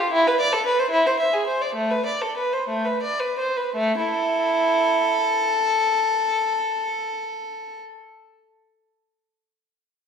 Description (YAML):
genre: classical, baroque-style suite movement for unaccompanied violin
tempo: 54-77 BPM (dotted quarters)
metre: 6/8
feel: rubato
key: A minor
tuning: A4 = 440 Hz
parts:
  - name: warm violin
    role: solo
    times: 0.0-7.8 s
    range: A3 to E5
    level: -20 LUFS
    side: equal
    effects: none
room: wet recital hall reverb, RT60 1.4 s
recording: recorded in a church or concert hall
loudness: -20 LUFS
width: side -6 dB against mid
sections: 0.0-3.7 A section; 3.7-8.1 B section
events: slowing down 0.0-3.7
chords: 0.1 Am/E; 0.9 E7; 1.8 Am; 3.7 A5